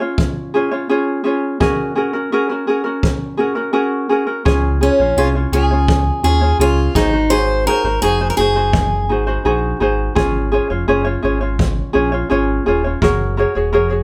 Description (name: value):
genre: acoustic pop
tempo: 84 BPM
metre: 4/4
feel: straight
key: Db major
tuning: A4 = 440 Hz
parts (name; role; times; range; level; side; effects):
- ukulele; accompaniment; 0.0-14.0 s; Db4 to Db5; -19 LUFS; equal; none
- kick drum; drums; 0.2-13.2 s; none; -21 LUFS; equal; none
- sub bass with octave; bass; 4.5-14.0 s; Eb1 to Eb2; -21 LUFS; equal; none
- picked steel-string acoustic guitar; melody; 4.8-9.8 s; Db4 to C5; -20 LUFS; equal; none
room: moderate studio reverb, RT60 0.6 s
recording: none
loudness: -17 LUFS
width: mono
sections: 0.0-14.0 A section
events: none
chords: 0.0 Db; 1.6 Gbadd9; 4.5 Db; 7.0 Ab7; 10.2 Gbadd9